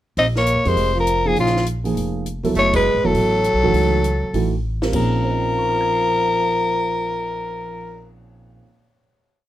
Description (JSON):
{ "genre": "modal jazz", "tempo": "202 BPM", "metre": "4/4", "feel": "swing 62% on 8ths", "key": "Bb dorian", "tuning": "A4 = 439 Hz", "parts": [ { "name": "growling soprano saxophone", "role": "melody", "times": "0.2-8.1 s", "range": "F4 to Eb5", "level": "-19 LUFS", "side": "left 2 dB", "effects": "none" }, { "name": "warm tenor saxophone", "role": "second line", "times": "0.2-8.1 s", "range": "Db3 to C4", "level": "-25 LUFS", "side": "right 4 dB", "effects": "none" }, { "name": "upright bass", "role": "bass", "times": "0.2-8.6 s", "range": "Fb1 to Db3", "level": "-24 LUFS", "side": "equal", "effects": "none" }, { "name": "compact cocktail drum kit", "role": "drums", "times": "0.2-7.2 s", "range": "crash cymbal, cymbal swell, hi-hat, kick drum, ride cymbal, snare drum", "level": "-31 LUFS", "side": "equal", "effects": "none" }, { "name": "dark upright piano", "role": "accompaniment", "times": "0.7-9.1 s", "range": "Bb2 to C7", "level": "-24 LUFS", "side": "right 4 dB", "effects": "none" } ], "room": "light reverb", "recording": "none", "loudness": "-17 LUFS", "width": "side -13 dB against mid", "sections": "0.2-4.9 A section; 4.9-7.3 final chord", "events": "band accent 2.7; drum fill 4.6", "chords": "0.2 Bbm11; 2.6 Gbm11; 4.9 Bbm11" }